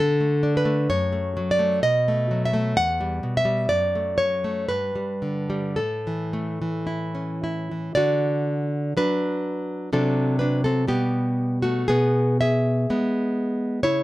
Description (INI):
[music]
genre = romantic piece for solo classical guitar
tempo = 53-67 BPM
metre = 2/4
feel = rubato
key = D major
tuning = A4 = 438 Hz
[part]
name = nylon-string guitar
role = solo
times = 0.0-14.0 s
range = E2 to F#5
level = -21 LUFS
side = equal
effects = none
[sound]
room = light reverb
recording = none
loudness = -21 LUFS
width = side -17 dB against mid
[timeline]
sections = 0.0-7.9 A section; 7.9-14.0 B section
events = none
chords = 0.0 D5; 0.9 F#m; 1.8 B7; 2.8 Em; 3.7 D/F#; 4.7 G; 5.8 A; 7.9 D; 9.9 D7/C; 10.9 G/B; 11.9 E/B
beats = | 0.02 0.92 | 1.83 2.77 | 3.72 4.72 | 5.79 6.88 | 7.94 8.95 | 9.92 10.88 | 11.87 12.87 | 13.82